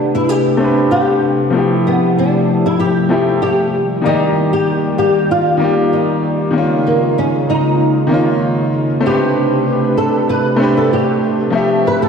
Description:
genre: sunset chillout.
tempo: 96 BPM.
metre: 4/4.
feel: straight.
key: unclear.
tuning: A4 = 443 Hz.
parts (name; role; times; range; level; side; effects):
flamenco guitar; melody; 0.0-12.1 s; Bb3 to B4; -18 LUFS; equal; ensemble chorus, diffuse ambient delay.
clear grand piano; accompaniment; 0.0-12.1 s; C3 to E5; -17 LUFS; left 1 dB; auto-pan, low-pass filter, ping-pong delay.
airy breathy pad; sustained chords; 0.0-12.1 s; C3 to E5; -16 LUFS; equal; chorus.
shaker; drums; 0.2-12.1 s; none; barely audible; none; none.
room: wet lush hall reverb, RT60 1.9 s, small room ambience.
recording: dreamy mix soaked in reverb.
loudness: -12 LUFS.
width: side -6 dB against mid.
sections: 0.0-12.1 A section.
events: filter sweep on grand piano 0.0-12.1; filter sweep on analog synth pad 0.0-12.1.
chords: 0.0 Am11; 1.5 Fmaj9; 3.7 Ebmaj7; 6.5 Db69; 9.0 Am11; 11.5 Fmaj9.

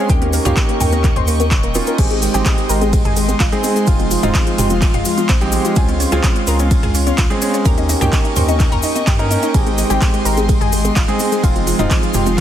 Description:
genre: progressive house.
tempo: 127 BPM.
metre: 4/4.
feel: straight.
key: Ab major.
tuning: A4 = 440 Hz.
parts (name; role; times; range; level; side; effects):
airy breathy pad; sustained chords; 0.0-12.4 s; Ab3 to Db6; -24 LUFS; equal; chorus, sidechain pumping.
analog pluck; arpeggios; 0.0-12.4 s; F3 to Db5; -22 LUFS; left 2 dB; chorus, sidechain pumping, ping-pong delay.
warm grand piano; stabs; 0.0-12.4 s; Ab3 to Bb4; -20 LUFS; right 2 dB; sidechain pumping, ping-pong delay.
saturated sub bass; bass; 0.1-12.4 s; Eb1 to G2; -20 LUFS; equal; sidechain pumping.
big-room dance drum kit; drums; 0.1-12.4 s; crash cymbal, handclaps, hi-hat, ride cymbal; -23 LUFS; right 2 dB; overdrive.
electronic kick drum; drums; 0.1-12.4 s; none; -16 LUFS; equal; none.
cabasa; percussion; 0.1-12.4 s; none; -28 LUFS; left 6 dB; none.
electronic congas and toms; percussion; 0.2-12.4 s; none; -26 LUFS; right 2 dB; none.
room: digital ambience.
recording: dense, heavily limited modern master.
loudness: -13 LUFS.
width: side -10 dB against mid.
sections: 0.0-12.4 A section.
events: none.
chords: 0.1 Eb7; 2.0 Abmaj7; 3.9 Fm7; 5.8 Dbmaj7; 7.7 Eb7; 9.5 Abmaj7; 11.4 Fm7.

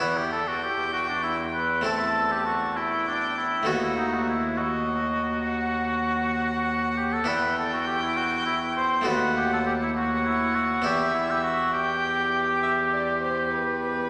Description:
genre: classical, baroque-style sonata movement with continuo.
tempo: 67 BPM (dotted quarters).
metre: 12/8.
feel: rubato.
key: E minor.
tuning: A4 = 440 Hz.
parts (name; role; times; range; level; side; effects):
warm violin; melody; 0.0-14.1 s; B4 to A5; -33 LUFS; equal; none.
warm oboe; second line; 0.0-14.1 s; D4 to C5; -28 LUFS; equal; none.
harpsichord; accompaniment; 0.0-14.1 s; D#2 to F#4; -34 LUFS; equal; none.
rich cello; bass; 0.0-14.1 s; D#2 to E2; -34 LUFS; equal; none.
room: wet concert hall reverb, RT60 2.5 s.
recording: none.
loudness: -25 LUFS.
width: mono.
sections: 0.0-14.1 A section.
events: none.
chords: 0.0 Em; 1.9 Am/E; 3.7 B7/D#; 7.3 Em; 9.1 B7/D#; 10.8 Em.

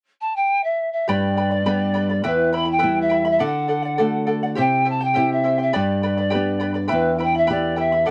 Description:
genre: andean folk, Andean ensemble.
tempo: 103 BPM.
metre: 2/4.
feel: straight.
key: E minor.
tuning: A4 = 441 Hz.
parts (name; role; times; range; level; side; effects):
polished pan flute; melody; 0.2-8.1 s; B4 to B5; -23 LUFS; equal; none.
charango; accompaniment; 1.1-8.1 s; E4 to B5; -27 LUFS; equal; none.
nylon-string guitar; accompaniment; 1.1-8.1 s; E2 to G4; -25 LUFS; equal; none.
room: little or no reverb.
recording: dry, close 1970s-style studio recording.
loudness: -20 LUFS.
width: mono.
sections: 0.0-1.1 A section; 1.1-8.1 B section.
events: none.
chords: 0.0 N.C.; 1.1 G; 2.3 Em; 3.4 D; 4.6 C; 5.7 G; 6.9 Em.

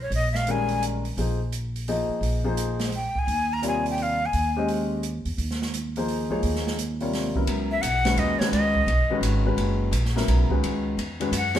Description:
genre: modal jazz.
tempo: 171 BPM.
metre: 3/4.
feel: swing 64% on 8ths.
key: C# dorian from 7.5 s.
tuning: A4 = 440 Hz.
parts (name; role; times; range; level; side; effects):
breathy bright jazz flute; melody; 0.0-0.8, 3.0-4.7, 7.7-9.2, 11.4-11.6 s; Db5 to Bb5; -25 LUFS; left 2 dB; none.
upright bass; bass; 0.0-11.6 s; F#1 to F#2; -26 LUFS; right 1 dB; none.
open jazz drum kit; drums; 0.1-11.6 s; hi-hat, kick drum, ride cymbal, snare drum; -31 LUFS; right 2 dB; none.
clear grand piano; accompaniment; 0.5-11.6 s; C3 to Eb5; -27 LUFS; left 3 dB; none.
room: wet stone room reverb, RT60 1.0 s.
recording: band playing live in one room.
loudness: -22 LUFS.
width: side -11 dB against mid.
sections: 0.0-7.5 A section; 7.5-11.6 B section.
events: none.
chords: 0.0 Bb9sus4; 3.3 Eb9sus4; 7.5 C#9sus4.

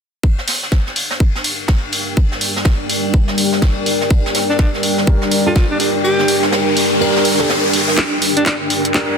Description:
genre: bass house.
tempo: 124 BPM.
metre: 4/4.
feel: swing 61% on 16ths.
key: G minor.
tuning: A4 = 444 Hz.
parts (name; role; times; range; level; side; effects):
deep dark ambient pad; sustained chords; 1.9-9.2 s; G3 to D5; -20 LUFS; left 1 dB; chorus, built-in reverb, sidechain pumping.
electronic kick drum; drums; 0.2-9.1 s; none; -14 LUFS; equal; high-pass filter on kick, high-pass filter on room.
jazz brush drum kit; drums; 0.2-8.0 s; ride cymbal, snare drum; -24 LUFS; left 2 dB; high-pass filter on cymbals, soft clipping on snare, high-pass filter on snare, high-pass filter on room.
granular cloud pad; texture; 1.1-9.2 s; D4 to G5; -21 LUFS; equal; built-in reverb, sidechain pumping.
garage drum kit; drums; 0.5-9.1 s; handclaps, hi-hat; -19 LUFS; equal; none.
riser; sound effects; 5.4-9.2 s; none; -22 LUFS; left 1 dB; none.
clear alto saxophone; melody; 4.5-8.6 s; D4 to G4; -20 LUFS; equal; vintage 12-bit sampler grit, dub echo.
dark grand piano; stabs; 5.1-9.2 s; D4 to Bb4; -22 LUFS; right 2 dB; sidechain pumping, low-pass filter, dub echo.
room: moderate lush hall reverb, RT60 1.7 s.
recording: dense, heavily limited modern master.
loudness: -13 LUFS.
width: side -6 dB against mid.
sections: 0.2-8.0 A section; 8.0-9.2 B section.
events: filter sweep on ambient pad 0.2-8.0, 8.0-9.2; riser 5.4-8.0, 8.0-9.2; kick drops out 6.0-8.0; build-up 8.0-9.2; drum fill 8.0-9.2.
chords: 0.2 Gm.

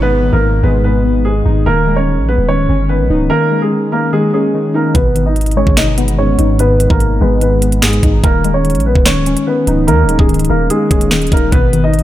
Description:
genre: hip hop, drill.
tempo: 146 BPM.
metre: 4/4.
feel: half-time.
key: G# harmonic minor.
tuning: A4 = 440 Hz.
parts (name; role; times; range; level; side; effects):
dark upright piano; melody; 0.0-12.0 s; G#3 to D#5; -16 LUFS; right 1 dB; low-pass filter.
warbly lo-fi synth keys; accompaniment; 0.0-12.0 s; G#2 to D#4; -16 LUFS; left 2 dB; chorus, low-pass filter.
long sustained 808-style bass; bass; 0.0-12.0 s; C#1 to D#2; -15 LUFS; equal; none.
downlifter; sound effects; 0.0-1.7 s; none; -39 LUFS; right 2 dB; none.
drill drum kit; drums; 4.9-12.0 s; finger snaps, hi-hat, kick drum, snare drum; -14 LUFS; equal; none.
room: light reverb.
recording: none.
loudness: -10 LUFS.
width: side -13 dB against mid.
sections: 0.0-4.9 A section; 4.9-12.0 B section.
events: filter sweep 4.9-11.5.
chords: 0.0 G#m; 1.7 D#7sus4; 4.9 G#m; 8.2 D#7sus4; 11.5 G#m.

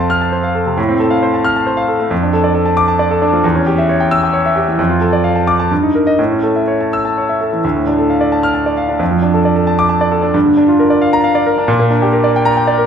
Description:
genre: classical, virtuoso piano study.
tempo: 134 BPM.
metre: 3/4.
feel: rubato.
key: D minor.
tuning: A4 = 440 Hz.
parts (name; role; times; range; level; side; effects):
clear concert grand piano; solo; 0.0-12.9 s; D2 to F6; -11 LUFS; equal; none.
room: moderate recital hall reverb, RT60 1.5 s.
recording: minimal, uncompressed stereo recording.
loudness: -11 LUFS.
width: side -7 dB against mid.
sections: 0.0-7.6 A section; 7.6-12.9 B section.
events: none.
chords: 0.0 F; 0.8 F/A; 2.1 Dm/F; 3.4 C#dim/E; 4.8 Dm/F; 5.7 Eb/G; 6.2 A; 7.6 Dm; 9.0 Dm/F; 10.3 Gm7; 11.7 Gm/Bb.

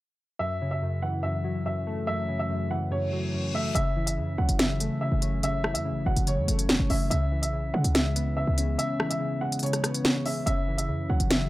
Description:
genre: hip hop, drill.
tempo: 143 BPM.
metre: 4/4.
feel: half-time.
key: F# minor.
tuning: A4 = 439 Hz.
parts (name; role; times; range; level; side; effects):
dark baby grand piano; melody; 0.4-11.5 s; C#5 to F#5; -32 LUFS; equal; low-pass filter.
warbly lo-fi synth keys; accompaniment; 0.4-11.5 s; F#2 to C#4; -29 LUFS; equal; chorus, low-pass filter.
reverse cymbal; sound effects; 3.0-3.8 s; none; -37 LUFS; left 5 dB; none.
short 808-style bass; bass; 3.8-11.5 s; E1 to C#3; -27 LUFS; equal; transformer saturation.
drill drum kit; drums; 3.8-11.4 s; hi-hat, rim click, snare drum; -26 LUFS; equal; none.
room: little or no reverb.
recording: dry, gritty hardware recording.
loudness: -24 LUFS.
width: side -17 dB against mid.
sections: 0.4-3.8 A section; 3.8-11.5 B section.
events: reverse cymbal 3.0-3.8; kick muted 8.8-10.5.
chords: 0.4 F#m7; 7.1 C#m7; 10.5 F#7(no3).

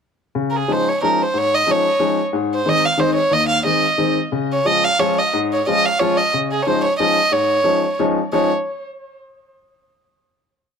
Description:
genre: musette waltz.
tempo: 181 BPM.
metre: 3/4.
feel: rubato.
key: Db major.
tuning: A4 = 439 Hz.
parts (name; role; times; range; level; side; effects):
clear upright piano; accompaniment; 0.4-8.5 s; Eb2 to F4; -20 LUFS; left 3 dB; none.
warm violin; melody; 0.5-8.5 s; Ab4 to F5; -17 LUFS; right 2 dB; tape echo.
room: light reverb.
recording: close, detailed microphones.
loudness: -15 LUFS.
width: side -6 dB against mid.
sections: 0.4-8.3 A section; 8.3-9.3 final chord.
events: none.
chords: 0.4 Dbadd9; 2.3 Ab; 4.3 Db; 6.3 Dbadd9.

